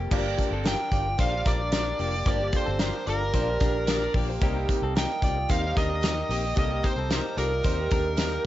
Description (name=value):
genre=jangly indie pop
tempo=112 BPM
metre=4/4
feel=straight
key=unclear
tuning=A4 = 440 Hz
part: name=picked twelve-string acoustic guitar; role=accompaniment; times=0.0-8.5 s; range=G2 to A4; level=-34 LUFS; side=right 5 dB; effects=none
part: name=direct-recorded clean electric guitar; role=arpeggios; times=0.0-8.5 s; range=Bb3 to D5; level=-34 LUFS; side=left 4 dB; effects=none
part: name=vintage muted fingered electric bass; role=bass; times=0.0-8.4 s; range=F1 to Eb2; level=-30 LUFS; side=equal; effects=none
part: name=combo organ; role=accompaniment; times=0.1-8.3 s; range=C4 to C5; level=-36 LUFS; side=left 9 dB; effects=none
part: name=loose indie drum kit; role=drums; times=0.1-8.3 s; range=crash cymbal, hi-hat, kick drum, snare drum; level=-27 LUFS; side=equal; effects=none
part: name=fuzz lead guitar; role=melody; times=0.7-8.4 s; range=Bb4 to G5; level=-30 LUFS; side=right 1 dB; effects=distortion, tape echo
part: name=dark studio violin section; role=second line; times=3.6-4.8 s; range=Bb4 to D5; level=-41 LUFS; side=left 1 dB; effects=none
room=light reverb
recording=nothing above 7.7 kHz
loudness=-23 LUFS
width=side -14 dB against mid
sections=0.1-8.5 A section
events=none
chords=0.0 D7sus4; 4.4 Cm7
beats=| 0.11 0.65 1.19 1.73 | 2.27 2.80 3.34 3.88 | 4.42 4.95 5.49 6.03 | 6.57 7.10 7.64 8.18